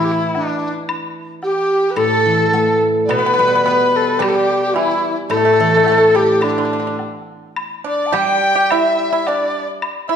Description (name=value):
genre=chinese traditional, Chinese chamber ensemble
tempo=108 BPM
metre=2/4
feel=rubato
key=unclear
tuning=A4 = 440 Hz
part: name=large dizi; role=melody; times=0.0-10.2 s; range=D4 to A5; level=-18 LUFS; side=equal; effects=none
part: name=clear erhu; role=second line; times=0.0-10.2 s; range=D4 to G5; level=-20 LUFS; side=left 5 dB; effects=none
part: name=steel-string zither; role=accompaniment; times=0.0-9.8 s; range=A2 to B3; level=-18 LUFS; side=right 1 dB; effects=none
part: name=woodblock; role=percussion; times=0.3-9.9 s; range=none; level=-29 LUFS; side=left 2 dB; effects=none
part: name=pipa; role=second line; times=3.1-10.2 s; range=D3 to G4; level=-22 LUFS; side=right 5 dB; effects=none
room=wet recital hall reverb, RT60 1.6 s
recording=dark, warm production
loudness=-13 LUFS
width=side -8 dB against mid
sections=0.0-7.6 A section; 7.6-10.2 B section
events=none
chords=none